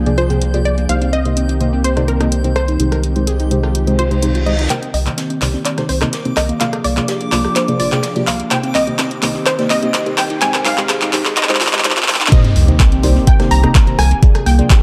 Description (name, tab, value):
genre	progressive house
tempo	126 BPM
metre	4/4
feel	straight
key	C minor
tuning	A4 = 440 Hz
part	unison pluck	melody	0.0-14.8 s	Bb4 to Bb5	-25 LUFS	equal	sidechain pumping, digital delay
part	warm analog pad	sustained chords	0.0-14.8 s	Eb3 to Ab4	-27 LUFS	equal	chorus, sidechain pumping
part	glassy wavetable pluck	arpeggios	0.0-14.8 s	Bb3 to Eb5	-26 LUFS	equal	chorus, sidechain pumping, digital delay
part	round analog bass	bass	0.0-14.6 s	G1 to C2	-19 LUFS	equal	sidechain pumping
part	backwards swelling texture	texture	0.0-12.3 s	D6 to G6	-35 LUFS	equal	built-in reverb, sidechain pumping
part	deep mellow chord stab	stabs	0.1-14.8 s	C3 to G5	-24 LUFS	equal	chorus, sidechain pumping, digital delay
part	pop drum kit	drums	0.1-14.8 s	handclaps, hi-hat, rim click	-22 LUFS	equal	overdrive
part	reverse cymbal, riser and sub drop	sound effects	4.1-14.2 s	none	-26 LUFS	equal	none
part	soft round pluck	second line	4.7-14.8 s	C5 to Bb5	-30 LUFS	equal	none
part	vintage brush drum kit	drums	4.7-14.8 s	hi-hat, snare drum	-34 LUFS	equal	none
part	electronic kick drum	drums	12.3-14.8 s	none	-12 LUFS	equal	overdrive
room	moderate lush hall reverb, RT60 2.0 s, digital ambience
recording	dark, warm production, high-pass filter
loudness	-15 LUFS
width	mono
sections	0.0-4.7 A section; 4.7-12.3 B section; 12.3-14.8 C section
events	reverse cymbal 4.1-4.7; build-up 4.7-12.3; drum fill 4.7-12.3; filter sweep on synth stab 4.7-12.3; filter sweep on analog synth pad 4.7-12.3; filter sweep on synth pluck 4.7-12.3; filter sweep 4.7-12.3; drop 12.3-14.8; impact 12.3-14.2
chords	0.0 Bb7/C; 0.9 Cm7; 2.8 Abmaj7/C; 4.7 Cm7; 6.6 Bb7/C; 8.5 Cm7; 10.4 Abmaj7/C; 12.3 Cm7; 14.2 Bb7/C